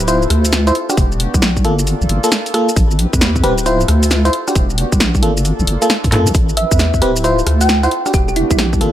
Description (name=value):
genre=UK garage, two-step garage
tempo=134 BPM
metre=4/4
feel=swing 65% on 16ths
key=unclear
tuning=A4 = 435 Hz
part: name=warm analog pad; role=sustained chords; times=0.0-8.9 s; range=Bb3 to B4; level=-25 LUFS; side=equal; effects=chorus, sidechain pumping
part: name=deep soft wobble bass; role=bass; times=0.0-8.9 s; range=D1 to G2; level=-16 LUFS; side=equal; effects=chorus
part: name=punchy analog drum machine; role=drums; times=0.0-8.9 s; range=handclaps, hi-hat, rim click, shaker, snare drum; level=-18 LUFS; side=equal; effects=none
part: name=FM electric piano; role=stabs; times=0.1-8.9 s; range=Bb3 to C5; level=-18 LUFS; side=equal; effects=chorus, digital delay
part: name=electronic kick drum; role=drums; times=1.0-8.8 s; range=none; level=-16 LUFS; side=equal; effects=none
part: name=thumb-piano-like synth pluck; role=melody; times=6.6-8.6 s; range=E4 to G5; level=-19 LUFS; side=right 2 dB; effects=wide subtle chorus, digital delay
room=light reverb, digital ambience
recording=none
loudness=-12 LUFS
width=side -12 dB against mid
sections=0.0-8.9 A section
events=drum fill 6.1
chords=0.1 Dm9; 0.7 Em9; 1.6 Gm9; 2.8 Am9; 3.7 Dm9; 4.3 Em9; 5.2 Gm9; 6.3 Am9; 7.2 Dm9; 7.9 Em9